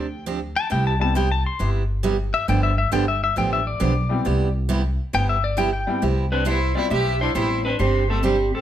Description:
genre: country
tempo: 136 BPM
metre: 4/4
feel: swing 66% on 8ths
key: C major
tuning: A4 = 442 Hz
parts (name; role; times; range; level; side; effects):
- pedal steel guitar; second line; 0.0-6.0 s; D5 to C6; -24 LUFS; left 4 dB; none
- picked steel-string acoustic guitar; accompaniment; 0.0-8.4 s; C3 to G4; -26 LUFS; right 5 dB; none
- upright bass; bass; 0.0-8.5 s; G1 to D2; -23 LUFS; equal; none
- bright upright piano; accompaniment; 1.0-1.1, 4.1-7.6 s; G3 to G4; -28 LUFS; left 3 dB; none
- clean lap steel guitar; melody; 6.3-8.6 s; C4 to E5; -22 LUFS; equal; none
- clear fiddle; second line; 6.3-8.6 s; G3 to G4; -28 LUFS; right 2 dB; none
room: moderate studio reverb, RT60 0.8 s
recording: none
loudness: -19 LUFS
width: side -11 dB against mid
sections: 0.0-6.0 A section; 6.0-8.6 B section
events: pedal steel guitar solo 0.0-6.0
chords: 0.0 G7sus4; 0.7 Cmaj7; 2.5 G7; 4.2 Cmaj7; 7.8 Gsus4

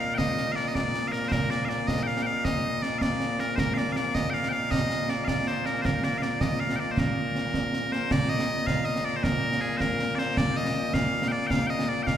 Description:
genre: scottish traditional, Scottish pipe music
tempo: 106 BPM (dotted quarters)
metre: 6/8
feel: straight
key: Bb major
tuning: A4 = 440 Hz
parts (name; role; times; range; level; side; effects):
- loud bright bagpipes; melody; 0.0-12.2 s; Bb2 to G5; -27 LUFS; left 1 dB; none
- concert snare drum and concert bass drum; drums; 0.2-12.2 s; none; -28 LUFS; right 1 dB; none
room: wet church reverb, RT60 3.3 s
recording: recorded in a church or concert hall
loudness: -24 LUFS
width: side -10 dB against mid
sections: 0.0-8.1 A section; 8.1-12.2 B section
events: none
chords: none

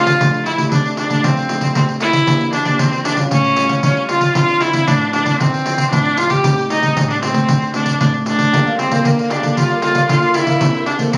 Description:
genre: samba and choro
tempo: 115 BPM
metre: 4/4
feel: straight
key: F major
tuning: A4 = 440 Hz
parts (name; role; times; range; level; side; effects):
- rich viola; melody; 0.0-11.2 s; Bb3 to G4; -18 LUFS; equal; none
- cavaquinho; accompaniment; 0.0-0.2, 8.5-11.2 s; E4 to F5; -26 LUFS; equal; none
- nylon-string guitar; accompaniment; 0.0-11.2 s; G2 to A4; -23 LUFS; equal; none
- pandeiro; percussion; 0.1-11.2 s; none; -21 LUFS; equal; none
room: moderate large studio reverb, RT60 0.9 s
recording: recorded on a phone in the room, studio reverb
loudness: -16 LUFS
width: mono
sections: 0.2-11.2 A section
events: none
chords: 0.2 F69; 2.3 Em7b5; 3.3 A7b13; 4.4 Dm9; 6.4 Am7b5; 7.5 D7; 8.5 Gm9; 10.6 C6

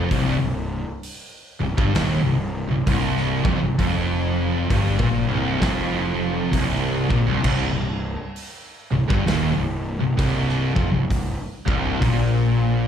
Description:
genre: stoner and doom metal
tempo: 66 BPM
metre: 4/4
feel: swing 63% on 8ths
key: C minor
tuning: A4 = 440 Hz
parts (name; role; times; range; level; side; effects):
- cranked stack guitar; riff; 0.0-12.9 s; C2 to Bb2; -26 LUFS; equal; overdrive, slapback echo
- thick fuzz guitar; riff; 0.0-12.9 s; C2 to Bb2; -25 LUFS; left 7 dB; distortion
- thick fuzz guitar; riff; 0.0-12.9 s; C2 to Bb2; -25 LUFS; right 7 dB; distortion
- fuzz fingered electric bass; bass; 0.0-12.9 s; C1 to Bb1; -27 LUFS; equal; overdrive
- big rock drum kit; drums; 0.1-12.3 s; crash cymbal, hi-hat, kick drum, snare drum; -27 LUFS; equal; none
room: light reverb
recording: live gig heard through the venue's PA, club reverb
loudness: -19 LUFS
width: side -8 dB against mid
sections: 0.0-12.9 A section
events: none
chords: 0.0 Cm

